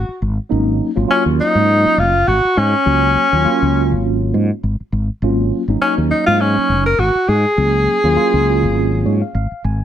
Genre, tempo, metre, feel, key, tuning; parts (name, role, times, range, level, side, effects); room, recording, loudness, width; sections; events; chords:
electric jazz fusion; 102 BPM; 4/4; swing 56% on 16ths; A4 = 439 Hz
mellow tenor saxophone; melody; 0.0-9.3 s; C#4 to A#4; -15 LUFS; left 1 dB; slapback echo
mellow fretless electric bass; bass; 0.0-9.8 s; F#1 to G#2; -17 LUFS; equal
mellow tine electric piano; accompaniment; 0.5-9.8 s; F#3 to G#5; -19 LUFS; right 2 dB; medium stereo tremolo, phaser
moderate studio reverb, RT60 0.7 s; -13 LUFS; side -10 dB against mid
0.0-9.8 A section
tine electric piano fill 8.8-9.8
0.0 G#13sus4